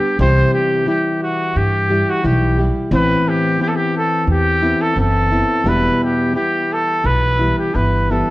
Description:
mexican folk, mariachi; 88 BPM; 4/4; rubato; A4 = 441 Hz
warm trumpet; melody; 0.0-8.3 s; F#4 to C5; -18 LUFS; equal
nylon-string guitar; accompaniment; 0.0-8.3 s; E2 to G4; -19 LUFS; left 1 dB
upright bass; bass; 0.2-8.2 s; E1 to G2; -18 LUFS; equal
light reverb; worn, warbling old tape, cassette tape, warbly pitch drift; -14 LUFS; side -18 dB against mid
0.0-8.3 A section
0.2 C; 2.9 Amadd9; 5.7 Em

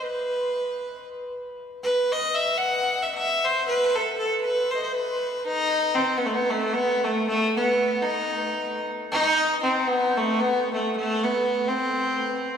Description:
balkan folk; free time; A4 = 440 Hz
bright fiddle; solo; 0.0-12.5 s; A3 to F#5; -22 LUFS; equal
wet cathedral reverb, RT60 5.0 s; recorded in a church or concert hall, studio reverb; -22 LUFS; side -7 dB against mid
0.0-5.5 A section; 5.5-12.6 B section

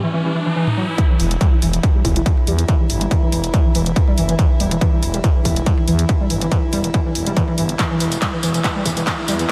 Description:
driving peak-time techno; 141 BPM; 4/4; straight; E minor; A4 = 442 Hz
overdriven synth lead; riff; 0.0-9.5 s; E3 to G3; -24 LUFS; equal; tube saturation, ensemble chorus, sidechain pumping, tape echo
riser; sound effects; 0.0-1.0, 9.2-9.5 s; -32 LUFS; equal
techno drum kit; drums; 0.7-9.5 s; handclaps, hi-hat, tambourine, toms; -26 LUFS; equal; overdrive, sidechain pumping on toms, high-pass filter on toms, sidechain pumping on hats, high-pass filter on hats, high-pass filter on snare, sidechain pumping on perc, high-pass filter on perc
metallic inharmonic drone; drone; 1.7-9.5 s; E3 to E4; -29 LUFS; equal; chorus, built-in reverb, sidechain pumping
electronic kick drum; drums; 1.0-9.5 s; -19 LUFS; equal; distortion, overdrive
growling FM bass; bass; 1.2-9.4 s; E1 to E2; -24 LUFS; equal; sidechain pumping
light reverb, digital ambience; high-pass filter; -18 LUFS; mono
1.0-9.5 A section
riser 0.0-1.0; build-up 1.0-9.5; filter sweep on analog synth lead 1.0-9.5; filter sweep 1.0-9.5; drum fill 7.8-9.5
0.0 N.C.; 1.0 E5

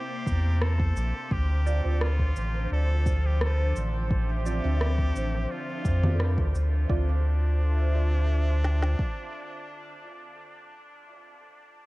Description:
ambient dub; 86 BPM; 4/4; straight; D minor; A4 = 440 Hz
trumpet with straight mute; melody; 0.0-10.4 s; D4 to A4; -37 LUFS; equal; cassette tape, dub echo
airy breathy pad; sustained chords; 0.0-10.4 s; C3 to E5; -38 LUFS; equal; chorus, cassette tape
bubbling stepped-filter texture; texture; 0.0-6.9 s; C5; -40 LUFS; right 1 dB; chorus, built-in reverb, cassette tape
warm sub bass; bass; 0.3-9.0 s; A1 to F2; -24 LUFS; equal
electronic cabasa, rim click and congas; drums; 0.3-6.7 s; -33 LUFS; equal; cassette tape
organic electronic drum kit; drums; 0.3-9.2 s; kick drum, snare drum; -29 LUFS; equal; cassette tape
filtered dub chord stab; stabs; 1.7-11.2 s; C4 to D5; -40 LUFS; right 6 dB; phaser, wide subtle chorus, cassette tape, dub echo
handpan; arpeggios; 4.8-11.2 s; C4 to E5; -43 LUFS; left 6 dB; cassette tape, dub echo
little or no reverb; home recording on cassette; -23 LUFS; side -20 dB against mid
0.0-6.9 A section; 6.9-9.7 B section
band accent 6.2-6.6
0.0 C7; 1.3 Dm7

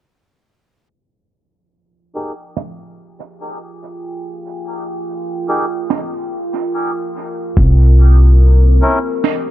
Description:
ambient dub; 72 BPM; 4/4; straight; F minor; A4 = 436 Hz
deep dark ambient pad; sustained chords; 3.6-9.5 s; C4 to Ab5; -23 LUFS; right 1 dB; chorus, built-in reverb
melodica; stabs; 2.2-9.0 s; Db4 to Bb4; -22 LUFS; left 1 dB; low-pass filter, dub echo
snare drum; drums; 2.6-9.4 s; -21 LUFS; right 8 dB; dub echo
upright bass; bass; 7.6-8.8 s; C2; -7 LUFS; equal
electronic kick drum; drums; 7.6-7.7 s; -12 LUFS; equal
little or no reverb; echo-heavy mix, low-pass filter; -12 LUFS; side -14 dB against mid
0.9-9.5 A section
fade-in on ambient pad 0.9-9.5; filter sweep on melodica 0.9-9.5; filter sweep 0.9-9.5
0.9 Fmadd9; 7.6 C7(no3)

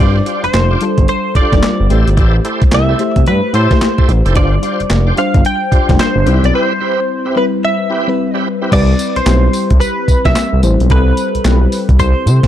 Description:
R&B, new jack swing; 110 BPM; 4/4; swing 63% on 16ths; A4 = 440 Hz
direct-recorded clean electric guitar; melody; 0.0-12.5 s; B4 to G5; -18 LUFS; right 1 dB; analog chorus
FM electric piano with soft pad layer; accompaniment; 0.0-12.5 s; G3 to D5; -18 LUFS; left 3 dB; chorus
bright tonewheel organ; stabs; 0.0-8.8 s; C4 to C5; -22 LUFS; right 2 dB; overdrive, chorus vibrato, slow rotary speaker
smooth gliding synth bass; bass; 0.0-12.4 s; F1 to C3; -12 LUFS; equal
clean 12-bit digital drum machine; drums; 0.3-12.5 s; crash cymbal, handclaps, hi-hat, kick drum, snare drum, tambourine; -14 LUFS; equal
digital ambience; dark, warm production; -10 LUFS; side -11 dB against mid
0.0-8.7 A section; 8.7-12.5 B section
break 6.5-8.7
0.0 G7sus4; 1.9 Am7; 4.4 G7sus4; 6.3 Cmaj7

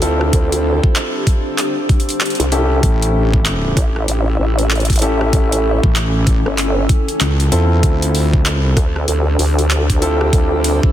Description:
glitch hop; 96 BPM; 4/4; swing 62% on 16ths; D minor; A4 = 440 Hz
warm concert grand piano; stabs; 0.0-10.9 s; C4 to A4; -21 LUFS; equal; sidechain pumping, tape echo
vowel-sweep wobble bass; bass; 0.0-10.8 s; G1 to D2; -16 LUFS; equal; chorus
drum and bass drum kit; drums; 0.0-10.8 s; handclaps, hi-hat, rim click; -22 LUFS; equal; overdrive
granular cloud pad; texture; 0.0-10.9 s; C#4 to C5; -23 LUFS; left 1 dB; built-in reverb, sidechain pumping
electronic kick drum; drums; 0.3-10.9 s; -15 LUFS; equal; overdrive
wobble bass; bass; 2.8-8.7 s; A1 to E2; -15 LUFS; equal; chorus, overdrive
digital ambience; dense, heavily limited modern master; -13 LUFS; side -12 dB against mid
0.0-10.9 A section
0.0 Dm7; 2.8 A7; 7.8 Dm7

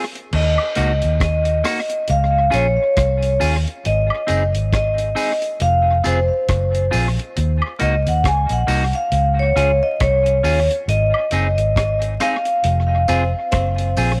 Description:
roots reggae; 68 BPM; 4/4; swing 59% on 16ths; Eb dorian; A4 = 439 Hz
clean electric guitar; accompaniment; 0.0-14.1 s; Bb3 to Ab4; -28 LUFS; equal; tape echo
deep reggae drum kit; drums; 0.2-14.2 s; crash cymbal, hi-hat, kick drum, rim click; -28 LUFS; equal; tape echo
vintage muted fingered electric bass; bass; 0.3-14.2 s; F1 to Eb2; -21 LUFS; equal
vibraphone with medium hard mallets; melody; 0.4-13.9 s; C5 to Ab5; -22 LUFS; equal; tape echo
woodblock and tambourine; percussion; 0.6-14.2 s; -31 LUFS; equal
breathy tenor saxophone; second line; 13.1-14.2 s; C4; -28 LUFS; equal; tape echo
light reverb, small room ambience; vinyl crackle; -18 LUFS; mono
0.3-14.2 A section
band accent 10.9-14.2
0.3 Ebm; 2.1 Db; 3.8 Ab; 5.6 Fm; 7.4 Ebm; 9.1 Db; 10.9 Ab; 12.6 Fm

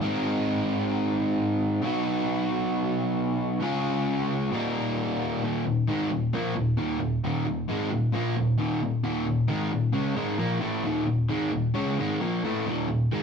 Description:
rock; 133 BPM; 4/4; straight; A4 = 439 Hz
crunchy overdriven guitar; solo; 0.0-13.2 s; Eb2 to Ab4; -24 LUFS; equal
wet studio reverb, RT60 0.6 s; rough rehearsal-room recording; -24 LUFS; side -6 dB against mid
0.0-5.4 A section; 5.4-13.2 B section
0.0 Ab; 1.8 B; 3.6 Db; 4.5 Eb; 5.4 Eb5

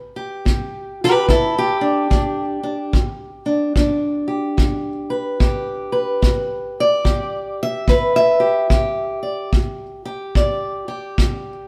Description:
acoustic country blues, solo or duo; 73 BPM; 4/4; swing 63% on 8ths; E minor; A4 = 440 Hz
fingerpicked steel-string acoustic guitar; melody; 0.0-11.7 s; E2 to E5; -21 LUFS; equal
kick drum; drums; 0.5-11.4 s; -20 LUFS; equal
moderate stone room reverb, RT60 1.2 s; band playing live in one room; -19 LUFS; mono
0.0-11.7 A section
0.0 Em7

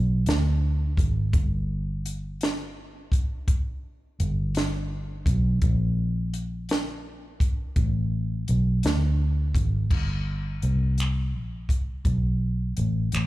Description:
slow six-eight R&B; 56 BPM (dotted quarters); 6/8; straight; A4 = 440 Hz
vintage muted fingered electric bass; bass; 0.0-13.3 s; F1 to D2; -24 LUFS; equal
compact cocktail drum kit; drums; 0.3-13.3 s; crash cymbal, finger snaps, hi-hat, kick drum, snare drum; -26 LUFS; equal
little or no reverb; live gig heard through the venue's PA, club reverb; -23 LUFS; side -17 dB against mid
0.0-9.9 A section; 9.9-13.3 B section

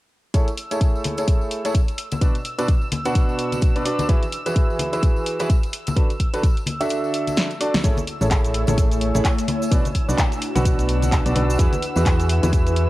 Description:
piano house; 128 BPM; 4/4; swing 58% on 16ths; A major; A4 = 444 Hz
analog string pad; sustained chords; 0.3-12.9 s; E6; -34 LUFS; right 1 dB; ensemble chorus, sidechain pumping, cassette tape
clear upright piano; riff; 0.3-12.9 s; B2 to F#5; -25 LUFS; right 1 dB; sidechain pumping, low-pass filter, cassette tape, analog delay
electronic kick drum; drums; 0.3-12.6 s; -19 LUFS; equal; cassette tape
house drum kit; drums; 0.3-12.9 s; cabasa, handclaps, hi-hat, snare drum; -27 LUFS; equal; cassette tape
tambourine and congas; percussion; 0.3-12.7 s; -30 LUFS; left 3 dB
solid FM bass; bass; 7.8-12.9 s; A1 to E2; -20 LUFS; equal; tube saturation, sidechain pumping
ethereal airy pad; texture; 8.5-12.9 s; A3 to G#5; -27 LUFS; equal; ensemble chorus, built-in reverb, sidechain pumping, cassette tape
light reverb; home recording on cassette; -18 LUFS; side -17 dB against mid
0.3-7.8 A section; 7.8-12.9 B section
kick drops out 6.9-7.8; drum fill 7.4-7.8
0.3 Amaj7; 2.2 Bm; 4.1 Eadd9; 6.0 D; 7.8 Amaj7; 9.7 Bm; 11.6 Eadd9

